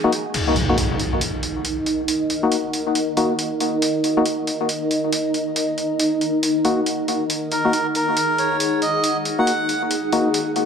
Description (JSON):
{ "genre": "deep dubstep", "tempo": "138 BPM", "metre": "4/4", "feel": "swing 61% on 16ths, half-time", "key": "Eb minor", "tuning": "A4 = 440 Hz", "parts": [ { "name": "granular cloud pad", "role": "sustained chords", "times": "0.0-10.7 s", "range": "Eb4 to Ab5", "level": "-22 LUFS", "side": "equal", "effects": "built-in reverb" }, { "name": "percussive organ stab", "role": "stabs", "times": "0.0-10.3 s", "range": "Bb3 to Gb4", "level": "-22 LUFS", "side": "left 2 dB", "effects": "chorus, analog delay" }, { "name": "trip hop sampler-style drum kit", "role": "drums", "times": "0.1-10.7 s", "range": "crash cymbal, hi-hat", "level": "-26 LUFS", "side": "equal", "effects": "analog delay" }, { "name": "impact", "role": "sound effects", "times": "0.3-2.1 s", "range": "none", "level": "-24 LUFS", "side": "equal", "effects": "none" }, { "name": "melodica", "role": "melody", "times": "7.5-9.8 s", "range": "Bb4 to Gb5", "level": "-21 LUFS", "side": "right 1 dB", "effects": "dub echo" } ], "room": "wet plate reverb, RT60 1.6 s, digital ambience", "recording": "echo-heavy mix", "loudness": "-18 LUFS", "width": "side -6 dB against mid", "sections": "0.3-10.7 A section", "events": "impact 0.3-2.1", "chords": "0.3 Ebm" }